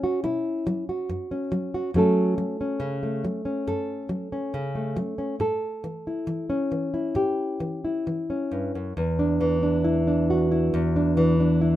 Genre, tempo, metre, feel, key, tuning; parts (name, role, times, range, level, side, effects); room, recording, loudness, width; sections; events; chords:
folk, solo fingerstyle acoustic guitar; 69 BPM; 4/4; rubato; E dorian; A4 = 438 Hz
nylon-string guitar; solo; 0.0-11.8 s; E2 to A4; -23 LUFS; equal
light reverb; minimal, uncompressed stereo recording; -23 LUFS; side -13 dB against mid
0.0-9.0 A section; 9.0-11.8 B section
0.0 Bsus2; 1.9 F#m; 5.4 A; 9.0 E7(no3)